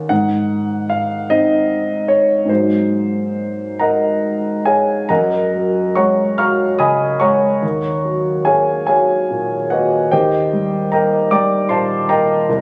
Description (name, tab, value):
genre	classical, impressionist solo piano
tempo	44-52 BPM (dotted quarters)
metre	6/8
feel	rubato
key	unclear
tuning	A4 = 439 Hz
part	clear grand piano	solo	0.0-12.6 s	C2 to E#6	-16 LUFS	equal	none
room	moderate scoring stage reverb, RT60 1.9 s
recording	recorded on a phone in the room, studio ambience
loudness	-16 LUFS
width	mono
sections	0.0-5.1 A section; 5.1-12.6 B section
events	none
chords	0.1 G#7; 2.5 G#9; 5.1 F#maj9; 7.6 D#m7; 10.1 D#maj9